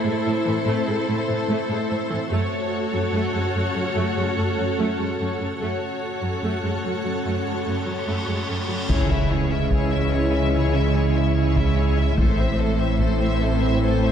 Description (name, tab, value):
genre	cinematic, hybrid orchestral and electronic film score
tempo	73 BPM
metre	4/4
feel	straight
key	C# harmonic minor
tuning	A4 = 440 Hz
part	clear symphonic violin section	second line	0.0-14.1 s	E4 to C#5	-29 LUFS	left 3 dB	none
part	warm symphonic viola section	accompaniment	0.0-14.1 s	E3 to F#4	-28 LUFS	right 1 dB	none
part	soft additive organ-like pad	sustained chords	0.0-14.1 s	G#3 to F#5	-28 LUFS	equal	ensemble chorus, built-in reverb
part	rich studio cello section	bass	0.1-14.1 s	F#2 to C#3	-26 LUFS	right 3 dB	none
part	cymbal swell and impact	sound effects	7.6-12.2 s	none	-30 LUFS	left 1 dB	none
part	rich studio violin section	melody	8.9-14.1 s	C5 to E5	-30 LUFS	left 7 dB	none
part	mellow French horn section	sustained chords	8.9-14.1 s	C4 to E4	-29 LUFS	left 4 dB	none
part	mellow trombone section	sustained chords	8.9-14.1 s	E3 to A3	-30 LUFS	right 3 dB	none
part	rich symphonic double bass section	bass	8.9-14.1 s	A1 to C#2	-28 LUFS	right 2 dB	none
part	warm sub bass	bass	8.9-14.1 s	A1 to C#2	-24 LUFS	left 1 dB	none
part	taiko ensemble	drums	8.9-13.8 s	none	-25 LUFS	left 1 dB	none
room	moderate scoring stage reverb, RT60 1.7 s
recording	dark, warm production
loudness	-20 LUFS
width	side -8 dB against mid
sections	0.0-8.9 A section; 8.9-14.1 B section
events	cymbal swell 7.6-8.9; impact 8.9-12.2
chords	0.0 Am; 2.3 F#m; 8.9 C#m; 12.2 Am